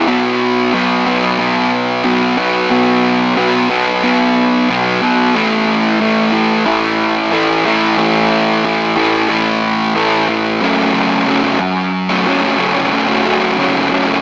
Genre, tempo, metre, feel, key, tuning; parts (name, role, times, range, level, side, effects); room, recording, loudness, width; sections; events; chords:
rock; 91 BPM; 4/4; straight; A4 = 440 Hz
fuzz guitar; solo; 0.0-14.2 s; F#2 to C#4; -10 LUFS; equal; distortion, analog delay
light reverb, digital ambience; small speaker sound; -11 LUFS; side -23 dB against mid
0.0-10.6 A section; 10.6-14.2 B section
build-up 0.0-10.6
0.1 B5; 5.4 A5; 10.6 F#m